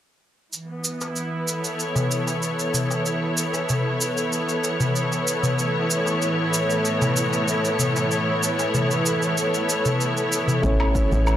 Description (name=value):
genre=organic downtempo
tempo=95 BPM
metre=4/4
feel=straight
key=A major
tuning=A4 = 438 Hz
part: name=rich symphonic string section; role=sustained chords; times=0.5-11.4 s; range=A2 to C#5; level=-22 LUFS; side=equal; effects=sidechain pumping
part: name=cabasa and woodblock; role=drums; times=0.5-11.4 s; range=none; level=-28 LUFS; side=right 2 dB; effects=none
part: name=darbuka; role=percussion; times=1.0-11.2 s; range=none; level=-27 LUFS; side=left 1 dB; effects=none
part: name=barky tine electric piano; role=accompaniment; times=10.6-11.4 s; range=A3 to C#5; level=-24 LUFS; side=right 1 dB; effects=lush chorus, sidechain pumping, analog delay
part: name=woody FM bass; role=bass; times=10.6-11.4 s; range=A1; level=-20 LUFS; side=equal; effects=sidechain pumping
part: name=electronic kick drum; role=drums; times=10.6-11.1 s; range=none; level=-26 LUFS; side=equal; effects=none
room=light reverb, digital ambience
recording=dry, gritty hardware recording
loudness=-20 LUFS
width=side -11 dB against mid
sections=0.5-11.4 A section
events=none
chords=0.5 A; 5.6 Aadd9